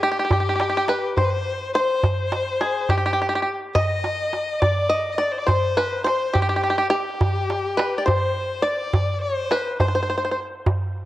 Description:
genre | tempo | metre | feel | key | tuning
Arabic maqam ensemble | 70 BPM (dotted quarters) | 6/8 | straight | C maqam nahawand | A4 = 438 Hz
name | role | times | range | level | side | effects
bluegrass banjo | melody | 0.0-10.4 s | G4 to Eb5 | -22 LUFS | equal | none
rich violin | second line | 0.0-10.4 s | G4 to Eb5 | -26 LUFS | left 3 dB | none
darbuka | percussion | 0.0-10.8 s | none | -23 LUFS | right 1 dB | none
room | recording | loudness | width
wet spring reverb, RT60 1.9 s, small room ambience | cassette tape | -20 LUFS | side -14 dB against mid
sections
0.0-10.7 A section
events
none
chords
none

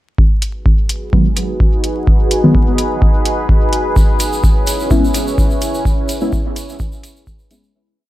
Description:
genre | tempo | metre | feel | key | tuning
dub techno | 127 BPM | 4/4 | straight | G# minor | A4 = 439 Hz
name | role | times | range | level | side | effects
deep dark ambient pad | sustained chords | 1.0-7.7 s | C#4 to B4 | -20 LUFS | equal | chorus, built-in reverb, vintage 12-bit sampler grit, sidechain pumping
electronic kick drum | drums | 0.2-7.4 s | none | -13 LUFS | equal | overdrive
electronic hi-hat | drums | 0.4-7.6 s | none | -22 LUFS | equal | overdrive
deep mellow chord stab | stabs | 1.1-7.7 s | D#3 to E4 | -16 LUFS | left 1 dB | chorus, phaser, sidechain pumping, dub echo
egg shaker | percussion | 4.0-7.7 s | none | -27 LUFS | right 1 dB | none
room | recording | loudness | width
little or no reverb | vinyl crackle | -12 LUFS | side -15 dB against mid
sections
0.2-7.7 groove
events
fade-out 5.2-7.7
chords
0.2 G#m7; 4.0 C#m7

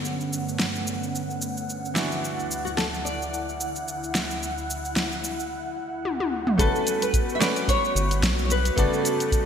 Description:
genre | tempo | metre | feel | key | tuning
sunset chillout | 110 BPM | 4/4 | swing 56% on 16ths | unclear | A4 = 440 Hz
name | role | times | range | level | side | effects
bright baby grand piano | accompaniment | 0.0-9.5 s | C#3 to D5 | -30 LUFS | right 2 dB | auto-pan, digital delay
airy breathy pad | sustained chords | 0.0-9.5 s | D2 to F#5 | -30 LUFS | equal | chorus
deep house drum kit | drums | 0.1-9.4 s | hi-hat, shaker, snare drum, toms | -28 LUFS | equal | overdrive, gated reverb
nylon-string guitar | melody | 2.6-9.5 s | F#4 to E5 | -26 LUFS | left 2 dB | analog chorus
round analog bass | bass | 6.6-8.9 s | G1 to B1 | -25 LUFS | equal | none
electronic kick drum | drums | 6.6-9.4 s | none | -24 LUFS | equal | none
room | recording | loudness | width
moderate lush hall reverb, RT60 2.4 s | bright 1980s-style digital production | -23 LUFS | side -8 dB against mid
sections
0.0-6.6 A section; 6.6-9.5 B section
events
filter sweep on analog synth pad 0.0-6.6; drum fill 6.0-6.6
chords
0.0 Gmaj9#11; 2.0 Dadd9; 6.6 Gmaj9#11

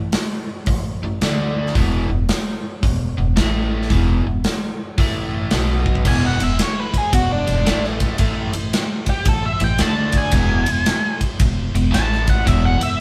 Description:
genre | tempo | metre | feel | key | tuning
blues rock power trio and southern rock | 112 BPM | 4/4 | swing 64% on 8ths | E mixolydian | A4 = 440 Hz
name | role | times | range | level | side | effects
overdriven electric guitar | riff | 0.0-13.0 s | E2 to D4 | -27 LUFS | equal | none
upright bass | bass | 0.0-13.0 s | E1 to D2 | -24 LUFS | equal | none
big rock drum kit | drums | 0.1-12.9 s | crash cymbal, hi-hat, kick drum, ride cymbal, snare drum | -22 LUFS | equal | none
octave-fuzz lead guitar | melody | 6.1-13.0 s | D4 to A5 | -24 LUFS | equal | distortion
room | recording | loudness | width
moderate studio reverb, RT60 0.8 s | band playing live in one room | -19 LUFS | mono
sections
0.0-6.1 A section; 6.1-13.0 B section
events
lead electric guitar solo 6.1-13.0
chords
0.0 A5; 1.2 D5; 1.7 E5; 3.4 A5; 3.9 E5; 5.0 A5; 5.5 B5; 6.1 E5; 7.7 A5; 9.8 D5; 10.3 E; 11.9 A5; 12.5 E5

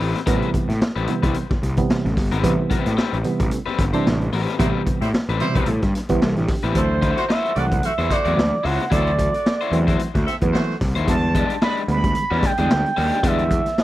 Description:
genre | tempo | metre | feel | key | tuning
funk | 111 BPM | 4/4 | swing 56% on 16ths | A dorian | A4 = 440 Hz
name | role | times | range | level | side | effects
crunchy overdriven guitar | accompaniment | 0.0-13.4 s | G#3 to D5 | -27 LUFS | left 8 dB | spring reverb
fuzz picked electric bass | bass | 0.0-13.6 s | G1 to A2 | -23 LUFS | equal | overdrive
raw garage drum kit | drums | 0.0-13.8 s | hi-hat, kick drum, snare drum | -23 LUFS | equal | none
barky reed electric piano | stabs | 0.3-13.7 s | B2 to A4 | -23 LUFS | right 2 dB | overdrive
bright horn section | second line | 4.6-10.8 s | F#3 to E5 | -27 LUFS | right 2 dB | none
expressive synth lead | melody | 6.8-13.8 s | C5 to B5 | -23 LUFS | right 3 dB | chorus
room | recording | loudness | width
little or no reverb | dry, close 1970s-style studio recording | -18 LUFS | side -15 dB against mid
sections
0.0-6.8 A section; 6.8-13.8 B section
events
band accent 4.6-6.8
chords
0.0 Am9; 6.8 D9; 11.1 E7#9

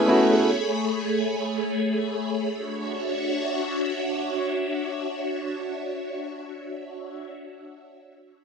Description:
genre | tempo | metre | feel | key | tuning
amapiano | free time | none | none | D lydian | A4 = 440 Hz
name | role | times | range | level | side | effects
warm grand piano | accompaniment | 0.0-0.5 s | A3 to B4 | -18 LUFS | equal | none
phased string machine | sustained chords | 0.0-7.3 s | A3 to B5 | -26 LUFS | equal | ensemble chorus, phaser
room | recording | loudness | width
moderate small room ambience, RT60 0.5 s | rough home demo mix | -24 LUFS | side -6 dB against mid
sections
0.0-2.5 A section; 2.5-6.7 B section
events
none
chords
0.0 Amaj9; 2.5 Dmaj9

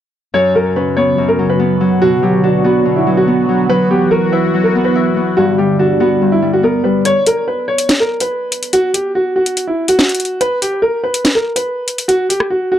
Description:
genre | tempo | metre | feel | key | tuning
hip hop, drill | 143 BPM | 4/4 | half-time | unclear | A4 = 440 Hz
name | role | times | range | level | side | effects
warm upright piano | melody | 0.3-12.8 s | E4 to C#5 | -14 LUFS | equal | low-pass filter
Celtic harp | accompaniment | 0.3-9.7 s | F#2 to F#4 | -16 LUFS | left 2 dB | low-pass filter
sweeping resonant pad | sustained chords | 0.3-7.0 s | C#3 to F#4 | -18 LUFS | right 3 dB | chorus
drill drum kit | drums | 7.1-12.5 s | hi-hat, rim click, snare drum | -15 LUFS | equal | none
room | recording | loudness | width
light reverb | dark, warm production | -12 LUFS | side -10 dB against mid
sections
0.3-7.1 A section; 7.1-12.8 B section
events
break 7.1-12.8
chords
0.3 F#sus4; 2.0 Bm; 3.7 Esus2; 5.4 G; 7.1 N.C.

